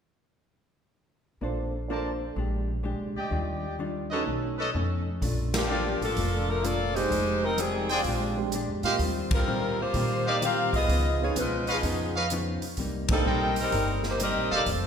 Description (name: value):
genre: jazz, big band swing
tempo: 127 BPM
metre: 4/4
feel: swing 67% on 8ths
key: Bb major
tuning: A4 = 441 Hz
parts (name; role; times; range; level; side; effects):
- hollow-body jazz guitar; accompaniment; 1.4-14.9 s; F2 to C5; -34 LUFS; left 2 dB; none
- warm baby grand piano; accompaniment; 1.4-13.2 s; Ab3 to C5; -35 LUFS; right 6 dB; none
- upright bass; bass; 1.4-14.9 s; E1 to Bb2; -32 LUFS; equal; none
- bright trumpet section; stabs; 1.9-14.6 s; F4 to A5; -31 LUFS; equal; none
- swinging big-band drum kit; drums; 5.2-14.8 s; hi-hat, kick drum, ride cymbal, snare drum; -32 LUFS; equal; none
- clear saxophone section; melody; 5.6-14.7 s; Eb3 to F5; -28 LUFS; left 1 dB; none
room: wet scoring stage reverb, RT60 1.9 s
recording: recorded in a church or concert hall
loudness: -25 LUFS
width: side -7 dB against mid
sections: 1.4-5.2 A section; 5.2-14.9 B section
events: band accent 5.5, 9.2, 13.0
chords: 1.4 Bbmaj9; 2.4 Bb13; 3.3 Ebmaj9; 4.3 B9; 5.2 Bbmaj7; 7.1 Fm9; 8.1 Bb13; 9.0 Eb69; 10.9 Db9; 12.8 Cm7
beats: | 1.42 1.90 2.37 2.85 | 3.32 3.79 4.27 4.74 | 5.21 5.69 6.16 6.63 | 7.11 7.58 8.05 8.53 | 9.00 9.47 9.95 10.42 | 10.89 11.36 11.84 12.31 | 12.78 13.25 13.73 14.20 | 14.67